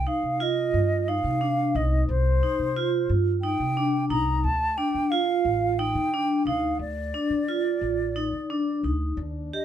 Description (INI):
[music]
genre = contemporary instrumental, chamber music in an uneven meter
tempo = 178 BPM (eighths)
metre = 7/8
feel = straight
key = unclear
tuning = A4 = 440 Hz
[part]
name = mellow concert flute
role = melody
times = 0.0-9.6 s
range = C5 to Bb5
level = -28 LUFS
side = equal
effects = none
[part]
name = upright bass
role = bass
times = 0.0-9.5 s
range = A1 to D3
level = -27 LUFS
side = equal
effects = none
[part]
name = vibraphone with hard mallets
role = arpeggios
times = 0.1-9.6 s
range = D4 to G4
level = -26 LUFS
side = right 2 dB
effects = none
[part]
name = warm French horn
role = second line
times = 9.2-9.6 s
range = D4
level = -38 LUFS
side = left 2 dB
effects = none
[sound]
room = light reverb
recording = minimal, uncompressed stereo recording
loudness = -22 LUFS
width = side -10 dB against mid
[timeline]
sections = 0.0-9.6 A section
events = none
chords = 0.0 Cmadd9; 4.4 Dm